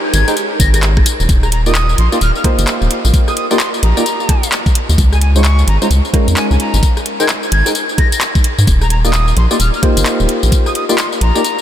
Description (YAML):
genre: UK garage, two-step garage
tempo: 130 BPM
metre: 4/4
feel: swing 61% on 16ths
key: Eb major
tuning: A4 = 440 Hz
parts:
  - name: airy breathy pad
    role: sustained chords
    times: 0.0-1.3 s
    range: Eb4 to Db5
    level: -27 LUFS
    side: right 1 dB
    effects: chorus, vintage 12-bit sampler grit, sidechain pumping
  - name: jazz flute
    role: melody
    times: 0.1-11.6 s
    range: Ab5 to Bb6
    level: -21 LUFS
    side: equal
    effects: tape echo
  - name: rubbery square bass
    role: bass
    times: 0.1-11.3 s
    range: Eb1 to Ab2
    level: -12 LUFS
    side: equal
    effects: tube saturation
  - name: garage drum kit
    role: drums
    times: 0.1-11.6 s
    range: handclaps, hi-hat, rim click, tambourine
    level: -18 LUFS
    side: left 2 dB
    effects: none
  - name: percussive organ stab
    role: stabs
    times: 0.3-11.4 s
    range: Ab3 to G5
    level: -18 LUFS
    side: equal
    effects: lush chorus, tape echo
  - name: electronic kick drum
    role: drums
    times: 0.6-10.6 s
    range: none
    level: -12 LUFS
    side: equal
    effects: none
room: moderate huge ambient reverb, RT60 7.5 s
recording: dreamy mix soaked in reverb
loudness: -11 LUFS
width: side -11 dB against mid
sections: 0.0-1.3 A section; 1.3-11.6 B section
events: drop 0.0-1.3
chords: 0.0 Abmaj7sus2; 1.3 Ebmaj9; 5.0 Dbmaj9; 6.8 Abmaj9; 8.7 Ebmaj9